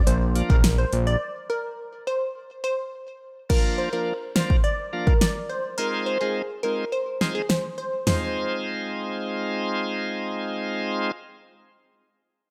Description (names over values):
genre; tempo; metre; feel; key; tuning
dancehall; 105 BPM; 4/4; straight; F dorian; A4 = 441 Hz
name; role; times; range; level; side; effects
fat analog bass; bass; 0.0-1.2 s; Bb1; -24 LUFS; equal; none
glassy wavetable pluck; melody; 0.1-9.7 s; Ab4 to D5; -30 LUFS; equal; chorus
deep house drum kit; drums; 0.1-8.2 s; crash cymbal, hi-hat, kick drum, snare drum, toms; -23 LUFS; equal; none
bright tonewheel organ; accompaniment; 0.4-11.1 s; F3 to F4; -30 LUFS; equal; overdrive, slow rotary speaker
room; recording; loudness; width
light reverb; none; -25 LUFS; mono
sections
0.0-3.5 A section; 3.5-8.1 B section; 8.1-10.4 C section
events
break 1.2-3.5, 5.8-8.1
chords
0.0 Bb; 1.2 N.C.; 3.5 Bb; 5.8 Fm7